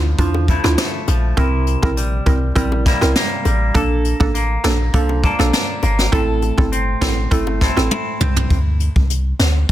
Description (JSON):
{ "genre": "dancehall", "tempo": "101 BPM", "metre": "4/4", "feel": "straight", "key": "D minor", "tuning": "A4 = 439 Hz", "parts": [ { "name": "mallet-like synth pluck", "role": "accompaniment", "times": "0.0-7.9 s", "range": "Bb3 to Bb4", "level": "-22 LUFS", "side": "right 4 dB", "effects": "chorus, sidechain pumping" }, { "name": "clean electric guitar", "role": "arpeggios", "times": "0.0-9.1 s", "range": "A2 to A4", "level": "-23 LUFS", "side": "left 2 dB", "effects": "none" }, { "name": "clean 808-style bass", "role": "bass", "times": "0.0-9.7 s", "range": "G1 to E2", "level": "-18 LUFS", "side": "equal", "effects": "none" }, { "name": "jazz brush drum kit", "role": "drums", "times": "0.2-9.7 s", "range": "hi-hat, kick drum, rim click, snare drum, toms", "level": "-19 LUFS", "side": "equal", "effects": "soft clipping on snare" }, { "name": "bongos", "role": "percussion", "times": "0.3-8.4 s", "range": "none", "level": "-27 LUFS", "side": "left 7 dB", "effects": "none" } ], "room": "small room ambience", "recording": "dense, heavily limited modern master", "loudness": "-14 LUFS", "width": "side -13 dB against mid", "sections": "0.0-8.5 A section; 8.5-9.7 B section", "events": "drum fill 7.9-8.5", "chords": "0.0 Dmadd9; 1.4 C7; 3.8 Bbmaj7; 6.1 Am; 8.5 Dsus2" }